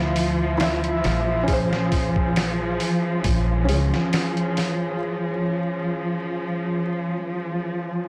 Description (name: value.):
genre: trip hop.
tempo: 68 BPM.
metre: 4/4.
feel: swing 54% on 16ths.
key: unclear.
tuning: A4 = 437 Hz.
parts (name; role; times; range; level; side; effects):
felt-muted upright piano; accompaniment; 0.0-8.1 s; Db4 to E5; -30 LUFS; equal; tremolo, tape echo.
dark studio string section; sustained chords; 0.0-8.1 s; F3; -27 LUFS; equal; vintage 12-bit sampler grit.
upright bass; bass; 0.0-3.9 s; Bb1 to D2; -27 LUFS; equal; none.
trip hop sampler-style drum kit; drums; 0.2-4.8 s; hi-hat, kick drum, snare drum; -28 LUFS; equal; soft clipping on snare.
room: light reverb, small room ambience.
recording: blown-out, overdriven recording, vinyl crackle, overdrive.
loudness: -23 LUFS.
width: mono.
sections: 0.0-8.1 A section.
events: break 5.0-8.1.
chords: 0.0 Dmadd9; 1.5 Bbm7.